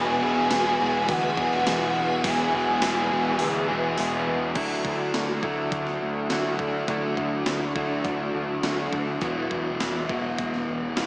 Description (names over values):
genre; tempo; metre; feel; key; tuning
rock, shoegaze and dream pop; 103 BPM; 4/4; straight; D lydian; A4 = 439 Hz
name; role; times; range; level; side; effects
pure breathy sine lead; melody; 0.0-4.0 s; F#5 to G#5; -26 LUFS; equal; chorus, diffuse ambient delay
phased string machine; sustained chords; 0.0-4.5 s; F#4 to G#5; -32 LUFS; equal; ensemble chorus, phaser
direct-recorded clean electric guitar; riff; 0.0-11.1 s; D3 to G#4; -33 LUFS; right 1 dB; none
distorted electric guitar; riff; 0.0-4.6 s; E2 to B3; -30 LUFS; equal; distortion
overdriven electric guitar; riff; 0.0-11.1 s; E2 to G#4; -26 LUFS; left 1 dB; analog chorus
growling picked electric bass; bass; 0.0-11.1 s; E1 to E2; -33 LUFS; equal; overdrive
gated 80s digital drum machine; drums; 0.5-11.1 s; crash cymbal, hi-hat, kick drum, snare drum; -30 LUFS; equal; gated reverb, gated reverb snare, overdrive
room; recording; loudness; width
wet huge ambient reverb, RT60 5.5 s; dreamy mix soaked in reverb, small speaker sound; -22 LUFS; side -26 dB against mid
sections
0.0-4.6 A section; 4.6-11.1 B section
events
kick and snare drop out 3.4-4.6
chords
0.0 Eadd9; 4.6 Dadd9; 9.2 Esus2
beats
0.51 1.09 1.67 | 2.25 2.83 3.40 3.98 | 4.56 5.14 5.73 6.31 | 6.89 7.47 8.05 8.64 | 9.22 9.80 10.38 10.97